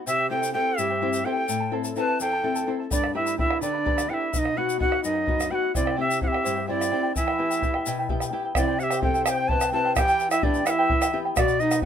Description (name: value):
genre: andean folk, Andean ensemble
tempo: 85 BPM (dotted quarters)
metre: 6/8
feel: straight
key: E minor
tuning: A4 = 440 Hz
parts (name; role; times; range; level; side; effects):
- charango; accompaniment; 0.0-11.9 s; E4 to B5; -31 LUFS; right 1 dB; none
- nylon-string guitar; accompaniment; 0.0-11.9 s; E2 to A4; -31 LUFS; left 7 dB; none
- reedy quena; melody; 0.1-11.9 s; D5 to A5; -25 LUFS; equal; none
- reedy pan flute; second line; 0.1-11.9 s; D4 to C5; -28 LUFS; right 1 dB; none
- tube shaker; percussion; 0.1-11.8 s; none; -34 LUFS; left 6 dB; none
- bombo; percussion; 2.9-11.9 s; none; -27 LUFS; right 1 dB; none
room: light reverb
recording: minimal, uncompressed stereo recording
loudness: -22 LUFS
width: side -8 dB against mid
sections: 0.0-8.6 A section; 8.6-11.9 B section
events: none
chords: 0.1 C; 1.5 Am; 2.9 G; 4.3 B; 5.7 C; 7.2 Em; 8.6 C; 10.0 Em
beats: | 0.07 0.78 | 1.49 2.20 | 2.91 3.62 | 4.33 5.04 | 5.75 6.45 | 7.16 7.86 | 8.56 9.26 | 9.96 10.66 | 11.35